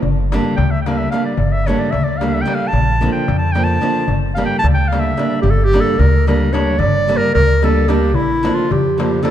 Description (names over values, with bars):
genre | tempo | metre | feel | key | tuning
balkan folk, Balkan wedding band | 222 BPM (eighths) | 5/8 | straight | G minor | A4 = 440 Hz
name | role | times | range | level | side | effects
upright bass | bass | 0.0-9.3 s | G1 to F2 | -17 LUFS | equal | none
darbuka | percussion | 0.0-9.3 s | none | -21 LUFS | left 6 dB | none
flamenco guitar | accompaniment | 0.3-9.3 s | D3 to D4 | -20 LUFS | right 2 dB | none
clear clarinet | melody | 0.6-9.3 s | E4 to A5 | -18 LUFS | right 1 dB | none
room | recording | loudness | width
moderate concert hall reverb, RT60 2.3 s | dark, warm production | -13 LUFS | side -11 dB against mid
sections
0.0-5.4 A section; 5.4-9.3 B section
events
clarinet solo 0.0-5.4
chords
0.0 Gm; 2.7 Bb; 4.1 Gm; 8.1 Bb